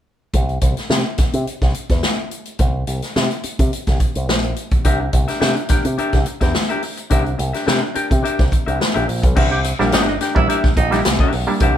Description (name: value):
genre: funk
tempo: 106 BPM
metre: 4/4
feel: straight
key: C mixolydian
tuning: A4 = 440 Hz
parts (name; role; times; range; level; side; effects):
- picked electric bass with an envelope filter; bass; 0.3-11.8 s; G1 to C3; -21 LUFS; equal; none
- swinging big-band drum kit; drums; 0.3-11.7 s; crash cymbal, hi-hat, kick drum, snare drum; -18 LUFS; equal; none
- semi-hollow electric guitar; accompaniment; 4.8-11.8 s; D4 to G5; -22 LUFS; left 3 dB; none
- raspy tenor saxophone; second line; 9.5-11.0 s; Eb4 to Bb4; -23 LUFS; right 4 dB; none
- muted clav; stabs; 9.8-11.8 s; G3 to E4; -21 LUFS; right 2 dB; overdrive
room: light reverb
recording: band playing live in one room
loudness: -16 LUFS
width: side -10 dB against mid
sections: 0.3-9.4 A section; 9.4-11.8 B section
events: none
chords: 0.3 C9